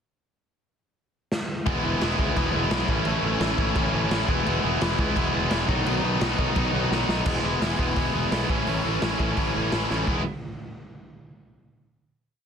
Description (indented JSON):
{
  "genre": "punk rock",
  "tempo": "171 BPM",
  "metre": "4/4",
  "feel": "straight",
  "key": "E major",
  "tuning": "A4 = 441 Hz",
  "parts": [
    { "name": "raw garage drum kit", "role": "drums", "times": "1.3-10.2 s", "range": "crash cymbal, hi-hat, kick drum, snare drum", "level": "-28 LUFS", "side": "equal", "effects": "none" },
    { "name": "distorted electric guitar", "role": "riff", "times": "1.7-10.2 s", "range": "A2 to G#4", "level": "-27 LUFS", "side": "left 14 dB", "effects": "overdrive" },
    { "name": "tight distorted guitar", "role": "riff", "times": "1.7-10.2 s", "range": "A2 to E4", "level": "-27 LUFS", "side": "right 15 dB", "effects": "distortion" },
    { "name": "fuzz picked electric bass", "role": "bass", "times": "1.7-10.2 s", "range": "E1 to C#2", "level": "-29 LUFS", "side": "equal", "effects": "overdrive" }
  ],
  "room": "light reverb",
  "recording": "dense, heavily limited modern master",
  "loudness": "-22 LUFS",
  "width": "side -7 dB against mid",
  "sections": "0.3-1.7 pickup bar; 1.7-7.3 riff; 7.3-10.1 outro; 10.1-11.5 final chord",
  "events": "drum fill 1.3-1.7, 6.9-7.3, 9.9",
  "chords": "0.3 N.C.; 1.7 E; 2.9 A; 4.3 E; 5.7 B; 7.3 E; 8.5 A; 10.1 E"
}